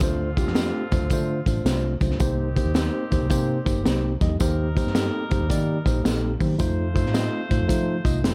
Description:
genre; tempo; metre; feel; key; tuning
uptempo 1960s-style soul; 110 BPM; 4/4; swing 66% on 8ths; unclear; A4 = 439 Hz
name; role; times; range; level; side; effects
clear horn section; second line; 0.0-8.3 s; D3 to C5; -38 LUFS; equal; none
mellow tine electric piano; accompaniment; 0.0-8.3 s; A3 to C6; -29 LUFS; equal; none
vintage muted fingered electric bass; bass; 0.0-8.3 s; F1 to F3; -28 LUFS; equal; none
crunchy breakbeat drum kit; drums; 0.0-8.3 s; hi-hat, kick drum, snare drum; -27 LUFS; equal; none
congas; percussion; 0.0-8.3 s; none; -40 LUFS; equal; none
tambourine; percussion; 0.0-8.3 s; none; -44 LUFS; equal; none
room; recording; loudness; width
small room ambience; dark, warm production; -23 LUFS; mono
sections
0.0-8.3 A section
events
tine electric piano fill 8.0-8.3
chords
0.0 Dm7; 2.2 Cm7; 4.4 Eb6; 6.6 F7

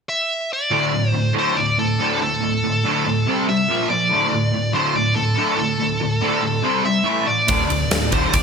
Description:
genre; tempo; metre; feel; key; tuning
hard rock; 142 BPM; 4/4; straight; unclear; A4 = 440 Hz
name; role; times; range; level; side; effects
high-gain lead guitar; melody; 0.1-8.4 s; A4 to E5; -21 LUFS; equal; distortion
cranked stack guitar; riff; 0.7-8.4 s; D2 to C4; -22 LUFS; right 8 dB; overdrive, ensemble chorus
overdriven semi-hollow guitar; riff; 0.7-8.4 s; D2 to C4; -23 LUFS; left 9 dB; wide subtle chorus
hollow-body short-scale fingered electric bass; bass; 7.5-8.4 s; D1; -25 LUFS; equal; none
huge arena drum kit; drums; 7.5-8.4 s; kick drum, ride cymbal, snare drum; -19 LUFS; equal; gated reverb
room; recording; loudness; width
moderate lush hall reverb, RT60 1.7 s, studio ambience; bright 1980s-style digital production; -17 LUFS; side -6 dB against mid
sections
0.7-8.4 A section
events
none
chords
0.0 N.C.; 0.7 D5; 3.3 C5; 3.7 Bb5; 4.1 D5; 6.7 C5; 7.1 A5; 7.5 D5

